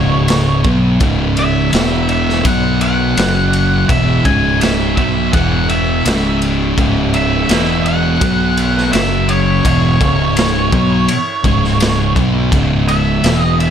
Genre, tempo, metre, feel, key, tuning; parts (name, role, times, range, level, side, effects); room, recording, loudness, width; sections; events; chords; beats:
stoner and doom metal; 83 BPM; 4/4; straight; C# minor; A4 = 440 Hz
octave-fuzz lead guitar; melody; 0.0-13.7 s; C#5 to G#5; -19 LUFS; right 1 dB; distortion
thick fuzz guitar; riff; 0.0-13.7 s; C#2 to B3; -18 LUFS; left 9 dB; distortion
thick fuzz guitar; riff; 0.0-13.7 s; C#2 to B3; -17 LUFS; right 8 dB; distortion
growling fingered electric bass; bass; 0.0-13.7 s; C#1 to B1; -19 LUFS; equal; overdrive
raw garage drum kit; drums; 0.3-13.7 s; kick drum, ride cymbal, snare drum; -18 LUFS; equal
small room ambience; -11 LUFS; side -8 dB against mid
0.0-13.7 A section
0.0 C#5; 1.7 E5; 2.5 B5; 3.2 F#5; 3.9 C#m; 5.3 E5; 6.1 C#5; 7.5 E5; 8.2 B5; 8.9 F#5; 9.7 C#m
0.29 | 1.01 1.73 2.45 3.17 | 3.90 4.62 5.34 6.06 | 6.78 7.50 8.22 8.94 | 9.65 10.37 11.09 11.81 | 12.53 13.24